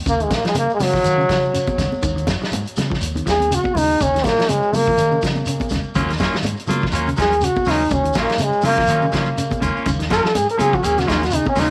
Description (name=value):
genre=afrobeat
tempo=123 BPM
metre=4/4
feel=swing 56% on 16ths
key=Eb minor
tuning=A4 = 436 Hz
part: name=clear trombone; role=melody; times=0.1-11.7 s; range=Gb3 to Bb4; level=-21 LUFS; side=equal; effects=tape echo
part: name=semi-hollow electric guitar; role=arpeggios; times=0.1-11.7 s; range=Db3 to Gb3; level=-29 LUFS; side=equal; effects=none
part: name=deep dub fingered electric bass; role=bass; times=0.1-11.7 s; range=Bb1 to Eb3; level=-27 LUFS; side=equal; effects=none
part: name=warm soul drum kit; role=drums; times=0.1-11.7 s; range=hi-hat, kick drum, snare drum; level=-27 LUFS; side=equal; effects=none
part: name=shekere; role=percussion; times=0.1-11.7 s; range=none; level=-34 LUFS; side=equal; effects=none
part: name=congas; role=percussion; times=0.3-11.7 s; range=none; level=-30 LUFS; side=equal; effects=none
part: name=clean electric guitar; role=stabs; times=6.0-11.7 s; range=Gb3 to F4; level=-26 LUFS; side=equal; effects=none
room=light reverb, studio reverb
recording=none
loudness=-19 LUFS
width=mono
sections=0.0-11.7 A section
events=trombone solo 0.0-11.7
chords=0.0 Ebm9